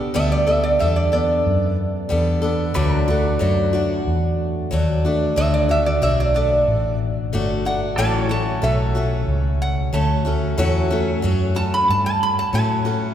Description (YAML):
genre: honky-tonk and classic country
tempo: 92 BPM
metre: 4/4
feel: straight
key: D major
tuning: A4 = 442 Hz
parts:
  - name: picked swing-style acoustic guitar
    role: accompaniment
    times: 0.0-13.1 s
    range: A2 to A4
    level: -23 LUFS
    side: left 2 dB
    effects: none
  - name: pedal steel guitar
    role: sustained chords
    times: 0.0-13.1 s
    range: A4 to D5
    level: -32 LUFS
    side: right 1 dB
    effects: none
  - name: lap resonator guitar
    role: melody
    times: 0.2-12.9 s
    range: D5 to B5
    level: -21 LUFS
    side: right 1 dB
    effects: none
  - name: vintage muted fingered electric bass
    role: bass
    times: 0.2-13.1 s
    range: G1 to A2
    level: -20 LUFS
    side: equal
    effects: none
room: wet church reverb, RT60 3.4 s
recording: recorded in a church or concert hall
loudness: -17 LUFS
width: side -10 dB against mid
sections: 0.0-13.1 A section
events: resonator guitar played with a steel bar solo 0.0-13.1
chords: 0.0 Gadd9; 2.8 D; 8.0 A6